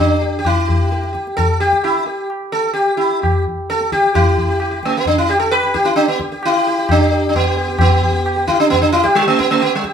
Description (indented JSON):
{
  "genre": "indian classical, Hindustani",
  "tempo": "131 BPM",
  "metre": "4/4",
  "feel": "straight",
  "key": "G raga bhupali",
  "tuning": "A4 = 440 Hz",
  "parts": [
    { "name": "sitar", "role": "melody", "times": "0.0-9.9 s", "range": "G3 to B4", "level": "-15 LUFS", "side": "equal", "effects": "none" },
    { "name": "tabla", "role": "percussion", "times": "0.2-9.9 s", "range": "none", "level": "-19 LUFS", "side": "left 1 dB", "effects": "none" }
  ],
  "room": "wet studio reverb, RT60 0.6 s",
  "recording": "band playing live in one room",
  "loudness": "-13 LUFS",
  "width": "side -8 dB against mid",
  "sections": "0.0-4.1 A section; 4.1-9.9 B section",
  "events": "none",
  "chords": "none"
}